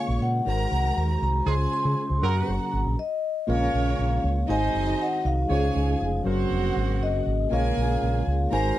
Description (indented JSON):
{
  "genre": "disco",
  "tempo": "119 BPM",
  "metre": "4/4",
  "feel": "straight",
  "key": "Bb minor",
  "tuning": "A4 = 444 Hz",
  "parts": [
    { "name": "vibraphone with soft mallets", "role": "melody", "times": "0.0-8.8 s", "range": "Eb5 to C6", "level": "-28 LUFS", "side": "left 2 dB", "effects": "none" },
    { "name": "rich studio violin section", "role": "second line", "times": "0.0-8.8 s", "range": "Db4 to Db6", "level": "-33 LUFS", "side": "right 2 dB", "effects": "none" },
    { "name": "tine electric piano", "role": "accompaniment", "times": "0.0-8.8 s", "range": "Db3 to Db5", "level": "-31 LUFS", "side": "left 4 dB", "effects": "none" },
    { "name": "mellow tonewheel organ", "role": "sustained chords", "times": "0.0-8.8 s", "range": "Db3 to C5", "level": "-33 LUFS", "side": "right 2 dB", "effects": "chorus vibrato, fast rotary speaker" },
    { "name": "fingered electric bass with an envelope filter", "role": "bass", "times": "0.1-8.7 s", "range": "F1 to Db3", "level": "-25 LUFS", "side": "equal", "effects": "none" },
    { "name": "mellow horn section", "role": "stabs", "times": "1.5-8.8 s", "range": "F3 to Db5", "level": "-32 LUFS", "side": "right 10 dB", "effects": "none" }
  ],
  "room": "little or no reverb",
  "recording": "dry, close 1970s-style studio recording",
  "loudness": "-22 LUFS",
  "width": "side -14 dB against mid",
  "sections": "0.0-3.5 A section; 3.5-8.8 B section",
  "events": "band accent 1.5-3.5; stop 3.0-3.5",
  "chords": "0.5 Ab7; 1.5 Dbmaj7; 2.2 Gb; 3.5 Bbm7; 4.5 Ab7; 5.5 Dbmaj7; 6.3 Gbmaj7; 7.5 Bbm7"
}